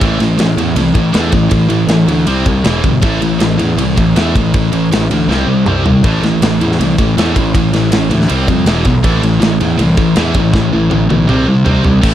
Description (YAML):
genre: heavy metal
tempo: 160 BPM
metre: 4/4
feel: straight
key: A minor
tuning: A4 = 441 Hz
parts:
  - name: scooped high-gain guitar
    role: riff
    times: 0.0-12.1 s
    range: E2 to C4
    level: -13 LUFS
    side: equal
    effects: distortion
  - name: fuzz picked electric bass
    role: bass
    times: 0.0-12.1 s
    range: E1 to F2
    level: -14 LUFS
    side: equal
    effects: overdrive
  - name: tight metal drum kit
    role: drums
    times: 0.0-12.1 s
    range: crash cymbal, kick drum, ride cymbal, snare drum, toms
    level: -16 LUFS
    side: equal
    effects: none
room: little or no reverb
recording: dark, warm production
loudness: -10 LUFS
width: side -11 dB against mid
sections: 0.0-12.0 A section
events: drum fill 5.3-6.0, 10.5-12.0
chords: 0.0 A5; 2.3 C5; 2.6 E5; 3.0 A5; 5.3 C5; 6.0 A5; 8.3 C5; 8.7 E5; 9.0 A5; 11.3 C5